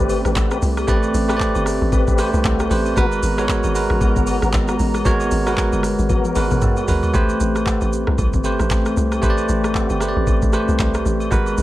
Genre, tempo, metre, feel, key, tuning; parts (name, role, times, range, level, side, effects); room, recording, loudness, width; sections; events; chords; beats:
amapiano; 115 BPM; 4/4; swing 58% on 16ths; A4 = 440 Hz
bell-like tine electric piano; accompaniment; 0.0-11.6 s; G#3 to D5; -21 LUFS; right 2 dB
hollow soft pad; sustained chords; 0.0-11.6 s; G#3 to A#5; -26 LUFS; left 2 dB; chorus
tonewheel organ; stabs; 0.0-6.8 s; B3 to B4; -26 LUFS; left 4 dB; chorus vibrato, slow rotary speaker, digital delay
tight log drum bass; bass; 0.0-11.6 s; G1 to C2; -21 LUFS; equal
smooth R&B drum kit; drums; 0.1-11.6 s; handclaps, hi-hat, kick drum, rim click, shaker, toms; -21 LUFS; equal
agogo bells and woodblock; percussion; 0.1-11.6 s; -32 LUFS; left 3 dB
little or no reverb; -16 LUFS; side -15 dB against mid
0.0-7.1 A section; 7.1-11.6 B section
drop 0.0-7.1; drum fill 6.1-7.1
0.0 Am9; 3.0 G#m9; 7.1 Am9
0.36 | 0.88 1.40 1.92 2.45 | 2.97 3.49 4.01 4.53 | 5.05 5.58 6.10 6.62 | 7.14 7.66 8.19 8.71 | 9.23 9.75 10.27 10.79 | 11.31